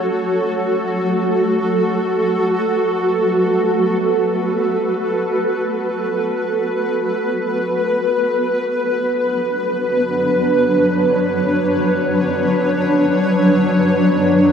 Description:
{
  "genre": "ambient",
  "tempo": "free time",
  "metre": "none",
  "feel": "none",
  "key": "F# minor",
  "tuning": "A4 = 440 Hz",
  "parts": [
    { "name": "granular cloud pad", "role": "solo", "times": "0.0-14.5 s", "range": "F#3 to C#5", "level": "-15 LUFS", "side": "equal", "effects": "built-in reverb, analog delay" }
  ],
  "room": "wet plate reverb, RT60 3.3 s",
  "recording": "dreamy mix soaked in reverb",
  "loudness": "-15 LUFS",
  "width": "side -7 dB against mid",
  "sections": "0.0-14.5 A section",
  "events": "none",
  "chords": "0.0 F#m; 8.7 Bmadd9/F#"
}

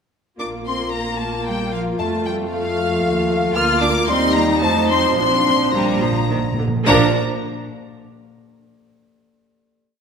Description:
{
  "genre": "quick classical-period movement for symphony orchestra",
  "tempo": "105-117 BPM",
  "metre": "3/4",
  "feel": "rubato",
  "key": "Bb major",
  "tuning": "A4 = 440 Hz",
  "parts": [
    { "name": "rich chamber violin section", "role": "melody", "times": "0.4-7.2 s", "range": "F5 to F6", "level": "-23 LUFS", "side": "left 4 dB", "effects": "none" },
    { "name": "mellow concert flute", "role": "second line", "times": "0.4-7.2 s", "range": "D5 to F6", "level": "-26 LUFS", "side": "left 4 dB", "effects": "none" },
    { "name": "warm clarinet", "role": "second line", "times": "0.4-7.1 s", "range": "D4 to F4", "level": "-28 LUFS", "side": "equal", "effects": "none" },
    { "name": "warm studio violin section", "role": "second line", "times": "0.4-7.2 s", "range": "Bb4 to F6", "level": "-28 LUFS", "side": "left 4 dB", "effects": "none" },
    { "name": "mellow bassoon", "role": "accompaniment", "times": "0.4-7.1 s", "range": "F3 to Bb3", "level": "-25 LUFS", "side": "right 1 dB", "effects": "none" },
    { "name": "rich chamber viola section", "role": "accompaniment", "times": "0.4-7.2 s", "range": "D3 to F4", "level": "-26 LUFS", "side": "right 1 dB", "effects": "none" },
    { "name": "warm French horn section", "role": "sustained chords", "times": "0.4-7.1 s", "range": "F3 to F4", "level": "-26 LUFS", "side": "left 2 dB", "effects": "none" },
    { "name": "clear studio double bass section", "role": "bass", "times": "0.4-7.2 s", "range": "Bb1 to F2", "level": "-27 LUFS", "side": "right 5 dB", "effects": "none" },
    { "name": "rich chamber cello section", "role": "bass", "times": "0.4-7.2 s", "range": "F3 to F4", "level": "-25 LUFS", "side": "right 3 dB", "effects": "none" },
    { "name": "timpani", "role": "percussion", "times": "2.0-2.7, 5.2-7.1 s", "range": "F2 to Bb2", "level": "-25 LUFS", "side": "right 2 dB", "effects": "none" }
  ],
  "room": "wet scoring stage reverb, RT60 1.9 s",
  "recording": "none",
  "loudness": "-16 LUFS",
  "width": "side -6 dB against mid",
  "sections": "0.4-6.9 A section; 6.9-8.5 final chord",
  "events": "timpani fill 5.2-6.9",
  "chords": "0.4 Bb5; 2.0 F; 3.0 F7/Eb; 3.6 Bb/D; 4.1 Eb; 4.6 F7; 5.2 Bb"
}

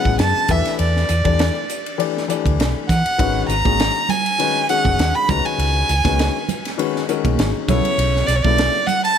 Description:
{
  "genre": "electric jazz fusion",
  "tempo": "100 BPM",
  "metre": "4/4",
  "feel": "swing 54% on 16ths",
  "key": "unclear",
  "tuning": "A4 = 440 Hz",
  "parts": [
    { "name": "rich violin", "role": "melody", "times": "0.0-9.2 s", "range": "C#5 to B5", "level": "-19 LUFS", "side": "right 2 dB", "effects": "none" },
    { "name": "warm grand piano", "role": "accompaniment", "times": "0.0-9.0 s", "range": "C#3 to D5", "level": "-23 LUFS", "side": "left 12 dB", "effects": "none" },
    { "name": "fingered electric bass", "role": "bass", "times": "0.1-8.7 s", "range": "F#1 to E3", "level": "-20 LUFS", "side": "right 1 dB", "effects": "none" },
    { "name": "crisp fusion drum kit", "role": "drums", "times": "0.1-9.2 s", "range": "hi-hat, kick drum, ride cymbal, snare drum", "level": "-23 LUFS", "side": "right 1 dB", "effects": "none" },
    { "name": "congas", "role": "percussion", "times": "3.6-9.0 s", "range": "none", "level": "-26 LUFS", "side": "right 12 dB", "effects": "none" }
  ],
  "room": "light reverb, studio reverb",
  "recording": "none",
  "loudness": "-16 LUFS",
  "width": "side -8 dB against mid",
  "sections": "0.0-9.2 A section",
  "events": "none",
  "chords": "0.5 Em7; 3.2 G#m9; 5.3 C#sus2; 7.7 Bsus2"
}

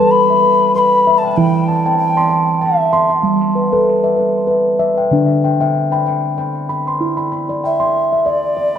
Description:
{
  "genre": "world meditative, meditative tuned percussion",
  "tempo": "96 BPM",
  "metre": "3/4",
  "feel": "swing 55% on 16ths",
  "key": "E minor",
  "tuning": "A4 = 439 Hz",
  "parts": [
    { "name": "breathy alto ocarina", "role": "melody", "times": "0.0-3.1, 7.7-8.8 s", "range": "D5 to C6", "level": "-15 LUFS", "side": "left 2 dB", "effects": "tape echo" },
    { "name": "steel tongue drum", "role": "arpeggios", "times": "0.0-8.8 s", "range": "D3 to C6", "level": "-14 LUFS", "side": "equal", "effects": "tape echo" }
  ],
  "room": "wet echo chamber reverb, RT60 1.5 s, studio ambience",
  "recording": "dark, warm production",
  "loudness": "-12 LUFS",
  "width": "side -8 dB against mid",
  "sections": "0.0-7.0 A section; 7.0-8.8 B section",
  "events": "none",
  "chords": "0.0 N.C.; 1.4 Em; 3.2 G; 5.1 Dsus4; 7.0 Em"
}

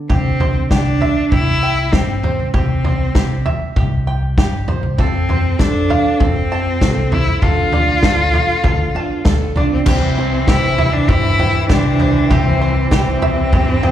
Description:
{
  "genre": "indie folk with a building arrangement",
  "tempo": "98 BPM",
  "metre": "4/4",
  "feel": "straight",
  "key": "C major",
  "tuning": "A4 = 441 Hz",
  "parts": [
    { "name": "fingerpicked steel-string acoustic guitar", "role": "accompaniment", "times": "0.0-1.3 s", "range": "D3", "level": "-30 LUFS", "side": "equal", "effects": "none" },
    { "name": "clear cello", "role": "melody", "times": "0.1-13.9 s", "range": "C4 to F4", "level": "-18 LUFS", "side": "left 1 dB", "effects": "slapback echo" },
    { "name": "bluegrass banjo", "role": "arpeggios", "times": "0.1-13.9 s", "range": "G4 to A5", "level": "-25 LUFS", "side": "right 4 dB", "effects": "slapback echo" },
    { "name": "upright bass", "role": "bass", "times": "0.1-13.9 s", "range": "C2 to G2", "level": "-19 LUFS", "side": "equal", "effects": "none" },
    { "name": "natural country drum kit", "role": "drums", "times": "0.1-13.9 s", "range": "crash cymbal, kick drum, snare drum, toms", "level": "-17 LUFS", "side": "equal", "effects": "none" },
    { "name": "picked twelve-string acoustic guitar", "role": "accompaniment", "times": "5.0-13.9 s", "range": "C3 to C5", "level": "-25 LUFS", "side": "equal", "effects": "wide subtle chorus, slapback echo" },
    { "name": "rich cello", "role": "second line", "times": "9.9-13.9 s", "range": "E3", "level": "-24 LUFS", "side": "right 1 dB", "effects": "slapback echo" },
    { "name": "felt-muted upright piano", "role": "accompaniment", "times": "9.9-13.9 s", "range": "C2 to C5", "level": "-27 LUFS", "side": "right 4 dB", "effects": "none" },
    { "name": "dark brass ensemble", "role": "sustained chords", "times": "9.9-13.9 s", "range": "E4 to G5", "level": "-32 LUFS", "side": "right 1 dB", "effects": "none" }
  ],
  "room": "small room ambience",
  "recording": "live gig heard through the venue's PA, club reverb",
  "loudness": "-13 LUFS",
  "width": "side -11 dB against mid",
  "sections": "0.1-9.9 A section; 9.9-13.9 B section",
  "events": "none",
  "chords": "0.1 C; 5.0 F; 7.4 Dm; 9.9 C"
}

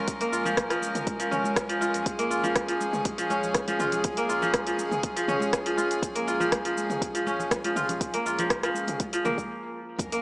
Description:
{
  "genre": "afro house",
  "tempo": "121 BPM",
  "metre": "4/4",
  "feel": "straight",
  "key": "Bb minor",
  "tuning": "A4 = 440 Hz",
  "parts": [
    { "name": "rich chamber string section", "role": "sustained chords", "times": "0.0-10.2 s", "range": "Ab3 to Bb4", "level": "-31 LUFS", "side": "equal", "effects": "sidechain pumping" },
    { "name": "kora", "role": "arpeggios", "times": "0.0-10.2 s", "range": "F3 to F4", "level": "-27 LUFS", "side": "equal", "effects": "sidechain pumping, low-pass filter, dub echo" },
    { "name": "warm sub bass", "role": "bass", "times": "0.0-10.2 s", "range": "F1 to Bb1", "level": "-48 LUFS", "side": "equal", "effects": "sidechain pumping" },
    { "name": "deep house drum kit", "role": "drums", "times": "0.1-10.2 s", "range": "cabasa, hi-hat, rim click, toms", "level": "-31 LUFS", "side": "equal", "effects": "overdrive" },
    { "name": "electronic kick drum", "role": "drums", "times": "0.1-10.1 s", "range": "none", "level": "-33 LUFS", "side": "equal", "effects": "overdrive" },
    { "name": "congas", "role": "percussion", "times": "0.2-10.1 s", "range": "none", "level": "-38 LUFS", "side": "equal", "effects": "none" },
    { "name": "sub drop", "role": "sound effects", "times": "10.1-10.2 s", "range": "none", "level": "-52 LUFS", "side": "equal", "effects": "none" }
  ],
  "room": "moderate lush hall reverb, RT60 2.1 s",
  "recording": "small speaker sound",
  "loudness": "-24 LUFS",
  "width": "side -25 dB against mid",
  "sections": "0.0-10.0 A section",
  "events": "stop 9.5-10.0; impact 10.0",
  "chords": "0.0 Bbm7"
}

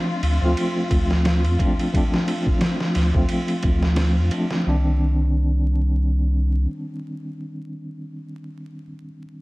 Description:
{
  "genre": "trip hop",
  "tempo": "88 BPM",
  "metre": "4/4",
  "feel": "swing 56% on 16ths",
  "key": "C dorian",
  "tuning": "A4 = 440 Hz",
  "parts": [
    { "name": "tine electric piano", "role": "accompaniment", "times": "0.0-9.4 s", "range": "Eb3 to F4", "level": "-25 LUFS", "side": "equal", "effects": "tremolo, vintage 12-bit sampler grit, low-pass filter, tape echo" },
    { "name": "rich studio string section", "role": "sustained chords", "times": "0.0-4.7 s", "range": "F4", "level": "-34 LUFS", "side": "left 3 dB", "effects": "none" },
    { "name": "warm sub bass", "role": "bass", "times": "0.2-6.7 s", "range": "C2 to F2", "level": "-19 LUFS", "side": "equal", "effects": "none" },
    { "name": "trip hop sampler-style drum kit", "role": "drums", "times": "0.2-4.6 s", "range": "kick drum, ride cymbal, snare drum", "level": "-23 LUFS", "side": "equal", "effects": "none" }
  ],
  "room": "digital ambience",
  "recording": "vinyl crackle",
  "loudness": "-18 LUFS",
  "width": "side -21 dB against mid",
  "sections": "0.0-4.7 A section; 4.7-7.4 B section",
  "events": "filter sweep on tine electric piano 0.0-4.7",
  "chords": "0.0 Dm7; 4.7 Cmadd9"
}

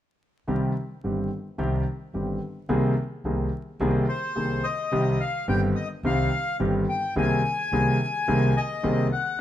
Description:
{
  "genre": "tango",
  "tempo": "108 BPM",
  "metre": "4/4",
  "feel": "rubato",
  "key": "C minor",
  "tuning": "A4 = 440 Hz",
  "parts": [
    { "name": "clear concert grand piano", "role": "accompaniment", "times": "0.5-9.4 s", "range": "G1 to Ab4", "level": "-26 LUFS", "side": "equal", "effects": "none" },
    { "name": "upright bass", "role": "bass", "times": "0.5-9.1 s", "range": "G1 to C2", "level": "-28 LUFS", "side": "equal", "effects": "none" },
    { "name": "bandoneon", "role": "melody", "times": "4.1-9.4 s", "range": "C5 to Ab5", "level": "-27 LUFS", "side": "left 3 dB", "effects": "none" }
  ],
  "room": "wet large studio reverb, RT60 1.2 s",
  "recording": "minimal, uncompressed stereo recording, vinyl crackle",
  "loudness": "-23 LUFS",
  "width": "side -11 dB against mid",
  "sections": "0.5-4.9 A section; 4.9-9.4 B section",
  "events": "none",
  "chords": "0.5 Cm; 2.7 Abadd9/C; 4.9 Cm; 7.2 Abadd9/C"
}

